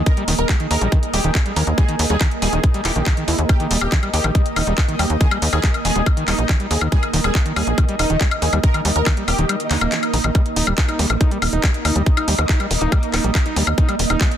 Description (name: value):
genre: psychedelic trance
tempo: 140 BPM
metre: 4/4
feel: straight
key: Eb major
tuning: A4 = 442 Hz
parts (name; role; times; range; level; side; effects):
- bubbling stepped-filter texture; sustained chords; 0.0-14.4 s; Eb4 to Eb5; -29 LUFS; right 1 dB; chorus, built-in reverb, sidechain pumping
- overdriven acid bass; riff; 0.0-14.3 s; D3 to Fb4; -26 LUFS; equal; distortion, auto-pan, cassette tape, sidechain pumping, ping-pong delay
- tight sequencer bass; bass; 0.0-14.2 s; Eb1 to Eb2; -20 LUFS; equal; none
- ethereal airy pad; texture; 0.0-14.4 s; Bb3 to Eb6; -27 LUFS; right 4 dB; ensemble chorus, built-in reverb, sidechain pumping
- supersaw stab; melody; 0.1-10.2 s; Eb4 to Bb4; -26 LUFS; right 1 dB; phaser, sidechain pumping, tape echo
- electronic kick drum; drums; 0.1-14.3 s; none; -16 LUFS; equal; none
- garage drum kit; drums; 0.1-14.4 s; handclaps, hi-hat, woodblock; -23 LUFS; left 2 dB; none
- swell; sound effects; 9.8-10.3 s; none; -32 LUFS; right 1 dB; none
- vowel-sweep wobble bass; second line; 11.0-13.3 s; Bb3; -33 LUFS; left 5 dB; none
room: light reverb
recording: dense, heavily limited modern master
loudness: -16 LUFS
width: side -10 dB against mid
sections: 0.0-14.4 A section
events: kick drops out 9.5-10.3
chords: 0.0 Eb5